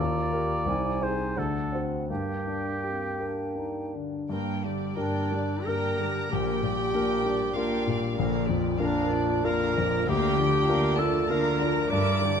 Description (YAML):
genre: classical, romantic movement for piano and orchestra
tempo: 78-100 BPM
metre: 3/4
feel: rubato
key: G minor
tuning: A4 = 438 Hz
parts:
  - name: warm concert grand piano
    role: melody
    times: 0.0-12.4 s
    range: Bb1 to C5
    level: -28 LUFS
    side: left 3 dB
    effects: none
  - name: mellow clarinet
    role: second line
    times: 0.0-12.4 s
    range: C4 to D5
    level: -30 LUFS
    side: equal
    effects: none
  - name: mellow silver concert flute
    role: second line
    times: 0.0-3.9 s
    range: F#5 to Bb5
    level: -39 LUFS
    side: left 1 dB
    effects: none
  - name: warm oboe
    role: second line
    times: 0.0-3.5 s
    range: G4 to D5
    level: -33 LUFS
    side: right 2 dB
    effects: none
  - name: dark bassoon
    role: accompaniment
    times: 0.0-3.9 s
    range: Bb3 to D4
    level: -35 LUFS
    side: right 4 dB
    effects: none
  - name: warm chamber violin section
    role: melody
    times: 4.3-12.4 s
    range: D5 to G5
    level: -39 LUFS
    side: left 4 dB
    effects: none
  - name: dark chamber viola section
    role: accompaniment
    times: 4.3-12.4 s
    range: D3 to Bb4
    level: -33 LUFS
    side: right 3 dB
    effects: none
  - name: dark chamber cello section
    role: bass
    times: 4.3-12.4 s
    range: G2 to D3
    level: -32 LUFS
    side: right 4 dB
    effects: none
  - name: warm chamber violin section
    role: second line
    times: 5.0-12.4 s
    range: D5 to D6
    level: -34 LUFS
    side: right 1 dB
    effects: none
room: moderate scoring stage reverb, RT60 1.6 s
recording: close, detailed microphones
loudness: -24 LUFS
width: side -7 dB against mid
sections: 0.0-4.3 A section; 4.3-12.4 B section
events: none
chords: 0.0 Eb; 0.7 Ab/C; 1.4 D7; 2.1 Gm; 6.3 Gm/Bb; 8.2 Bb; 10.1 Bb/D